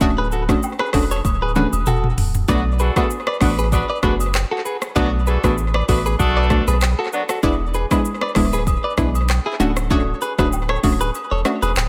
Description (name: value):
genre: afrobeats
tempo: 97 BPM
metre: 4/4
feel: swing 55% on 16ths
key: B dorian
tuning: A4 = 440 Hz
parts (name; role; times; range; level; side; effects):
- analog pluck; accompaniment; 0.0-11.7 s; G#3 to F#4; -24 LUFS; equal; chorus
- punchy sub bass; bass; 0.0-11.9 s; D1 to B1; -23 LUFS; equal; none
- afro-pop drum kit; drums; 0.0-11.9 s; handclaps, hi-hat, kick drum, rim click, shaker, toms; -24 LUFS; equal; tape echo
- agogo bells and woodblock; percussion; 0.0-11.9 s; none; -32 LUFS; equal; tape echo
- direct-recorded clean electric guitar; riff; 0.2-11.7 s; E4 to D5; -27 LUFS; equal; spring reverb, tape echo
- clear horn section; second line; 2.5-7.2 s; F#3 to B4; -27 LUFS; equal; none
room: light reverb, digital ambience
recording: echo-heavy mix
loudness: -19 LUFS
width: mono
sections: 0.0-2.5 A section; 2.5-11.9 B section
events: drum fill 1.2-2.5; kick muted 11.1-11.9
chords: 0.0 Dmaj7; 2.5 Bm7; 7.4 E7; 9.6 Dmaj7